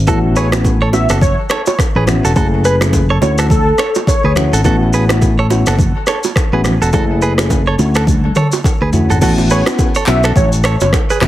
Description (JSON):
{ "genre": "afrobeats", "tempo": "105 BPM", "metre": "4/4", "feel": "swing 58% on 16ths", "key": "unclear", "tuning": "A4 = 440 Hz", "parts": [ { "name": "fingered electric bass", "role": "bass", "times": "0.0-11.3 s", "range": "E1 to D2", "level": "-14 LUFS", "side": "equal", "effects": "none" }, { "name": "soft electric-piano-like synth keys", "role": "accompaniment", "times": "0.1-11.3 s", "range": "A3 to G#4", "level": "-18 LUFS", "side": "left 2 dB", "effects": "chorus" }, { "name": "direct-recorded clean electric guitar", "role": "riff", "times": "0.1-11.2 s", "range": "F#4 to C#5", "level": "-20 LUFS", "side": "right 3 dB", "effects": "spring reverb, ping-pong delay" }, { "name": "afro-pop drum kit", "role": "drums", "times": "0.1-11.3 s", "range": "crash cymbal, finger snaps, handclaps, kick drum, rim click, shaker, toms", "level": "-16 LUFS", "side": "equal", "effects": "overdrive" }, { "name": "congas and bongos", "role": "percussion", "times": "0.1-11.3 s", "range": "none", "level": "-22 LUFS", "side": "right 6 dB", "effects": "none" }, { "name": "warm velvety synth lead", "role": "melody", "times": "0.4-4.5, 9.5-10.9 s", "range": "A4 to E5", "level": "-18 LUFS", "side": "left 1 dB", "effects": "chorus, ping-pong delay" } ], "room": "light reverb", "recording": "heavily compressed radio sound, multiband compression", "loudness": "-10 LUFS", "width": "side -14 dB against mid", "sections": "0.0-9.2 A section; 9.2-11.3 B section", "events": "drum fill 8.1-9.2", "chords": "0.1 A6; 2.4 F#m7; 3.2 Dmaj7; 4.6 A6; 6.9 F#m7; 7.8 Dmaj7; 9.2 A6", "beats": "| 0.07 0.65 1.22 1.79 | 2.36 2.93 3.50 4.07 | 4.64 5.22 5.79 6.36 | 6.93 7.50 8.07 8.64 | 9.22 9.79 10.36 10.93" }